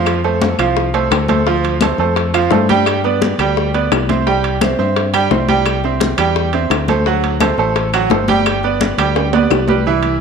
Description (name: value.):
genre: latin, salsa.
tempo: 172 BPM.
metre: 4/4.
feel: straight.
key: unclear.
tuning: A4 = 439 Hz.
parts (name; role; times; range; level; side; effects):
bright concert grand piano; accompaniment; 0.0-10.2 s; E3 to G5; -16 LUFS; right 6 dB; none.
fingered electric bass; bass; 0.0-10.2 s; G1 to G2; -20 LUFS; left 3 dB; none.
bongos; percussion; 0.1-9.9 s; none; -22 LUFS; left 14 dB; none.
claves; percussion; 0.1-9.7 s; none; -27 LUFS; left 14 dB; none.
congas; percussion; 0.1-10.2 s; none; -21 LUFS; left 4 dB; none.
timbales; percussion; 0.1-10.2 s; none; -23 LUFS; right 7 dB; none.
room: moderate echo chamber reverb, RT60 1.5 s, small room ambience.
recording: 1960s-style stereo with parts hard left and right.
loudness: -12 LUFS.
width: side -6 dB against mid.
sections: 0.0-9.9 A section.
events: drum fill 9.2-9.9.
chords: 0.1 F; 1.5 Dm7; 2.9 G; 4.3 C; 5.7 Am7/C; 7.1 D7; 8.5 G.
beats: | 0.07 0.42 0.77 1.12 | 1.47 1.82 2.17 2.52 | 2.87 3.22 3.57 3.92 | 4.26 4.62 4.96 5.31 | 5.66 6.01 6.36 6.71 | 7.06 7.41 7.76 8.11 | 8.46 8.81 9.16 9.51 | 9.86 10.21.